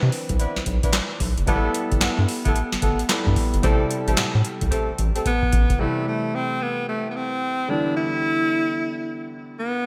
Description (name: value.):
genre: R&B, new jack swing.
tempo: 111 BPM.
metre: 4/4.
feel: swing 63% on 16ths.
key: A minor.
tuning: A4 = 435 Hz.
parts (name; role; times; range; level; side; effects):
warm grand piano; accompaniment; 0.0-9.9 s; C3 to B4; -30 LUFS; equal; none.
round analog bass; bass; 0.0-5.8 s; F#1 to C3; -25 LUFS; equal; none.
booming analog drum machine; drums; 0.1-5.9 s; handclaps, hi-hat, kick drum, snare drum; -25 LUFS; equal; gated reverb.
mellow horn section; stabs; 0.4-5.3 s; A3 to B4; -31 LUFS; equal; delay.
clear alto saxophone; melody; 5.3-9.9 s; A3 to E4; -26 LUFS; equal; delay.
room: moderate lush hall reverb, RT60 1.8 s, small room ambience.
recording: bright 1980s-style digital production.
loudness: -22 LUFS.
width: mono.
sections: 0.0-5.8 A section; 5.8-9.9 B section.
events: drum fill 4.7-5.8.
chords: 0.0 Cmaj9; 1.5 G69; 3.6 Am7; 7.7 G6.